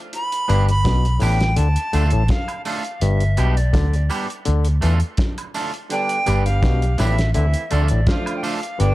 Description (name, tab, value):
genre	roots reggae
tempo	83 BPM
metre	4/4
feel	straight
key	G mixolydian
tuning	A4 = 439 Hz
part	bright reedy silver concert flute	melody	0.1-8.9 s	D5 to B5	-25 LUFS	right 1 dB	dub echo
part	cloth-damped thuddy drum kit	drums	0.1-8.9 s	hi-hat, kick drum, snare drum	-24 LUFS	equal	none
part	electric guitar at the edge of break-up	accompaniment	0.5-8.6 s	G3 to B4	-29 LUFS	right 3 dB	dub echo
part	mellow clav	riff	0.5-8.9 s	G2 to E3	-27 LUFS	left 6 dB	none
part	vintage muted fingered electric bass	bass	0.5-8.9 s	G1 to E2	-17 LUFS	equal	none
part	tambourine and woodblock	percussion	0.5-8.6 s	none	-35 LUFS	right 4 dB	none
part	mellow horn section	second line	5.9-8.9 s	D3 to G4	-28 LUFS	right 3 dB	dub echo
room	small room ambience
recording	dark, warm production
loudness	-17 LUFS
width	side -17 dB against mid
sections	0.0-8.9 A section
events	none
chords	0.1 G; 1.6 Dm; 3.0 G; 4.5 Dm; 5.9 G; 7.3 Dm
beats	| 0.13 0.85 1.58 2.30 | 3.02 3.74 4.46 5.18 | 5.90 6.62 7.34 8.07 | 8.79